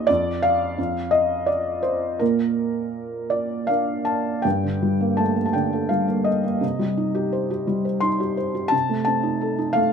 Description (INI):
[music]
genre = classical, lyrical solo piano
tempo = 79-88 BPM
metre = 3/4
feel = rubato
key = Bb major, G minor from 4.5 s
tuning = A4 = 439 Hz
[part]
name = felt-muted upright piano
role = solo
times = 0.0-9.9 s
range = F2 to C6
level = -20 LUFS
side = equal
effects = none
[sound]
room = moderate studio reverb, RT60 0.6 s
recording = minimal, uncompressed stereo recording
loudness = -20 LUFS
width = side -6 dB against mid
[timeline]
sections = 0.0-4.5 A section; 4.5-9.9 B section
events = none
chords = 0.1 N.C.; 2.2 Bb; 4.5 Gmadd9; 6.6 Cm; 8.7 Adim/C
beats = | 0.09 0.79 1.49 | 2.21 2.94 3.69 | 4.45 5.19 5.92 | 6.63 7.34 8.04 | 8.73 9.42